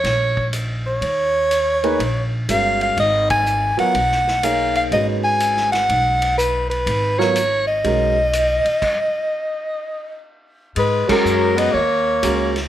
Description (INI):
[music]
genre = modal jazz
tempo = 123 BPM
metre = 4/4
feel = swing 66% on 8ths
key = unclear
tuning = A4 = 440 Hz
[part]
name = breathy soprano saxophone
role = melody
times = 0.0-12.6 s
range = A#4 to Ab5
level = -18 LUFS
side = equal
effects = none
[part]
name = upright bass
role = bass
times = 0.0-12.7 s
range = G1 to G#2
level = -24 LUFS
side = equal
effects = none
[part]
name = vintage drum kit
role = drums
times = 0.0-12.6 s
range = crash cymbal, hi-hat, kick drum, ride cymbal, snare drum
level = -28 LUFS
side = left 1 dB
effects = none
[part]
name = warm upright piano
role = accompaniment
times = 1.8-8.1, 11.1-12.5 s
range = Gb3 to Db5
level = -22 LUFS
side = right 3 dB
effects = none
[part]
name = clear tenor saxophone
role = second line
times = 10.8-12.5 s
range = F#3 to B3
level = -22 LUFS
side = left 6 dB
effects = none
[sound]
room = light reverb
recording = none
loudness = -16 LUFS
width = side -12 dB against mid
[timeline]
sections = 0.0-10.8 A section; 10.8-12.7 B section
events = band accent 3.2, 11.0; stop 8.8-10.8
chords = 0.0 Ebm7; 3.0 Abm9; 10.8 G#m9